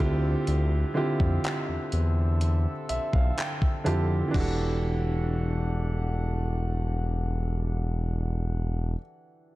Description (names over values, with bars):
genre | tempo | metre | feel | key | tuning
contemporary R&B | 62 BPM | 4/4 | straight | E minor | A4 = 439 Hz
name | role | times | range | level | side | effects
warm concert grand piano | accompaniment | 0.0-9.6 s | D3 to A5 | -30 LUFS | right 2 dB | none
mellow brass ensemble | sustained chords | 0.0-9.0 s | D3 to F#5 | -37 LUFS | left 2 dB | none
smooth synth bass | bass | 0.0-9.0 s | E1 to F2 | -26 LUFS | equal | none
downlifter | sound effects | 0.1-4.3 s | none | -50 LUFS | equal | none
crisp 8-bit digital drum machine | drums | 0.5-4.6 s | crash cymbal, handclaps, hi-hat, kick drum | -29 LUFS | equal | none
room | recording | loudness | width
little or no reverb | dark, warm production | -25 LUFS | side -18 dB against mid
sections
0.0-4.3 A section; 4.3-8.2 B section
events
grand piano fill 2.4-4.3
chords
0.0 Dm11; 4.3 Em11